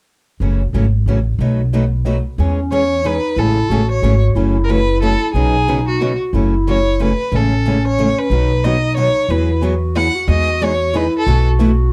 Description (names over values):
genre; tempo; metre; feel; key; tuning
acoustic string swing (jazz manouche); 182 BPM; 3/4; swing 59% on 8ths; E major; A4 = 440 Hz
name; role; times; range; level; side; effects
picked steel-string acoustic guitar; accompaniment; 0.4-11.7 s; B2 to B4; -24 LUFS; equal; none
picked steel-string acoustic guitar; accompaniment; 0.4-11.7 s; B2 to C#5; -29 LUFS; equal; none
upright bass; bass; 0.4-11.9 s; F#1 to E2; -19 LUFS; equal; none
breathy clarinet; second line; 2.4-11.9 s; C#4 to F#4; -24 LUFS; equal; none
rich violin; melody; 2.7-11.5 s; F#4 to F#5; -21 LUFS; equal; plate reverb
room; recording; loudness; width
light reverb; dark, warm production; -16 LUFS; mono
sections
0.4-2.4 A section; 2.4-10.3 B section; 10.3-11.9 C section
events
none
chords
0.4 F#m7; 1.4 B7; 2.4 E6; 3.4 Amaj7; 4.4 F#m7; 5.3 Badd9; 6.3 F#m7; 7.3 Amaj7; 8.3 B; 9.3 Eadd9; 10.3 Emaj7; 11.3 B7sus4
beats
| 0.41 0.74 1.07 | 1.40 1.72 2.05 | 2.38 2.71 3.04 | 3.37 3.70 4.03 | 4.36 4.69 5.02 | 5.34 5.67 6.00 | 6.33 6.66 6.99 | 7.32 7.65 7.98 | 8.31 8.64 8.97 | 9.30 9.62 9.95 | 10.28 10.61 10.94 | 11.27 11.60 11.93